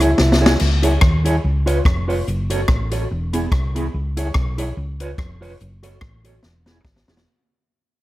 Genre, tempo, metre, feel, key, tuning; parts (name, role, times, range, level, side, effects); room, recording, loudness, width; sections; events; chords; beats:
ska; 144 BPM; 4/4; swing 56% on 8ths; C# minor; A4 = 441 Hz
mellow electric guitar; accompaniment; 0.0-7.2 s; B3 to C#5; -23 LUFS; right 1 dB; tremolo
hollow-body short-scale fingered electric bass; bass; 0.0-7.2 s; E1 to D#2; -20 LUFS; equal
swinging big-band drum kit; drums; 0.0-7.3 s; crash cymbal, hi-hat, kick drum, rim click, snare drum; -19 LUFS; equal
light reverb, small room reverb; -16 LUFS; side -16 dB against mid
0.6-7.3 A section
drum fill 0.2-0.6, 6.4-7.3; fade-out 0.6-7.3
0.0 C#m; 1.4 C#7; 2.3 F#m; 3.1 E; 3.9 C#m; 4.8 C#7; 5.6 F#m; 6.4 E
0.18 | 0.60 1.02 1.43 1.85 | 2.27 2.69 3.10 3.52 | 3.93 4.35 4.77 5.18 | 5.60 6.02 6.43 6.85